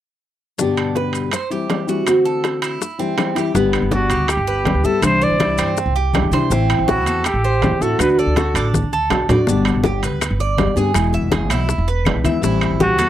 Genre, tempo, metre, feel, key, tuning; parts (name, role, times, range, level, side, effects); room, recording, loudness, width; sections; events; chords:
latin, Cuban son and guajira; 162 BPM; 4/4; straight; G major; A4 = 440 Hz
nylon-string guitar; accompaniment; 0.6-13.1 s; G2 to G4; -20 LUFS; left 3 dB
Cuban tres; arpeggios; 0.6-13.1 s; B3 to E5; -23 LUFS; right 6 dB
bongos; percussion; 0.6-13.0 s; -23 LUFS; left 6 dB
maracas; percussion; 0.6-13.1 s; -32 LUFS; left 10 dB
claves; percussion; 0.8-12.8 s; -33 LUFS; left 7 dB
timbales; percussion; 0.8-13.1 s; -26 LUFS; right 7 dB
upright bass; bass; 3.5-13.1 s; E1 to C3; -20 LUFS; right 1 dB
congas; percussion; 3.5-13.1 s; -23 LUFS; left 1 dB
breathy trumpet; melody; 3.9-8.7, 12.8-13.1 s; F#4 to D5; -19 LUFS; equal
light reverb; dry, close 1970s-style studio recording; -15 LUFS; side -12 dB against mid
0.6-3.5 A section; 3.5-13.1 B section
drum fill 8.7-9.5
0.6 G; 1.3 C; 2.1 D7; 2.8 C; 3.5 G; 5.0 Cadd9; 6.5 Am; 8.0 D; 9.5 G; 11.0 E; 12.4 Am7